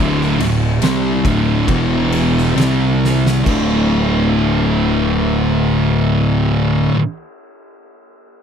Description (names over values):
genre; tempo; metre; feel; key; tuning
stoner and doom metal; 66-72 BPM; 4/4; straight; unclear; A4 = 440 Hz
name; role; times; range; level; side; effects
thick fuzz guitar; riff; 0.0-7.0 s; D2 to C4; -18 LUFS; left 8 dB; distortion
thick fuzz guitar; riff; 0.0-7.0 s; D2 to C4; -17 LUFS; right 8 dB; distortion
fuzz fingered electric bass; bass; 0.0-6.9 s; D1 to C2; -20 LUFS; equal; overdrive, tube saturation
oversized low-tuned drum kit; drums; 0.2-3.7 s; crash cymbal, kick drum, ride cymbal, snare drum; -23 LUFS; equal; none
room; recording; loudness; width
little or no reverb; none; -13 LUFS; side -7 dB against mid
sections
0.0-3.5 A section; 3.5-7.1 B section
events
slowing down 0.0-3.5; drum fill 3.0-3.5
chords
0.0 D5; 1.7 E5; 2.6 C5; 3.5 D5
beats
0.83 1.69 2.57 | 3.47 4.38 5.29 6.20